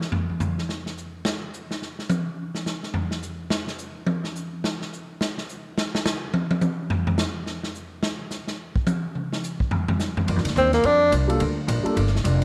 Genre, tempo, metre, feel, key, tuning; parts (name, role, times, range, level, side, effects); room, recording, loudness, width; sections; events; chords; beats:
jazz, big band swing; 213 BPM; 4/4; swing 60% on 8ths; G minor; A4 = 441 Hz
swinging big-band drum kit; drums; 0.0-12.4 s; hi-hat, kick drum, ride cymbal, snare drum, toms; -28 LUFS; equal
vintage hollow-body jazz guitar; accompaniment; 10.3-12.4 s; G2 to D4; -32 LUFS; equal
upright bass; bass; 10.3-12.4 s; F1 to G2; -25 LUFS; equal
warm tenor saxophone; melody; 10.6-11.1 s; Bb3 to D4; -20 LUFS; equal
dark baby grand piano; accompaniment; 11.3-12.0 s; G3 to A4; -29 LUFS; equal
moderate spring reverb, RT60 1.3 s, small room reverb; -25 LUFS; mono
0.0-10.3 A section; 10.3-12.4 A section
drum solo 0.0-10.3; tenor saxophone solo 10.3-12.4
0.0 N.C.; 10.3 Gm7
| 0.12 0.40 0.68 0.97 | 1.25 1.53 1.81 2.10 | 2.38 2.66 2.94 3.23 | 3.51 3.79 4.07 4.36 | 4.64 4.92 5.20 5.48 | 5.77 6.05 6.33 6.61 | 6.89 7.18 7.46 7.74 | 8.02 8.30 8.59 8.87 | 9.15 9.43 9.71 9.99 | 10.28 10.56 10.84 11.12 | 11.40 11.69 11.97 12.25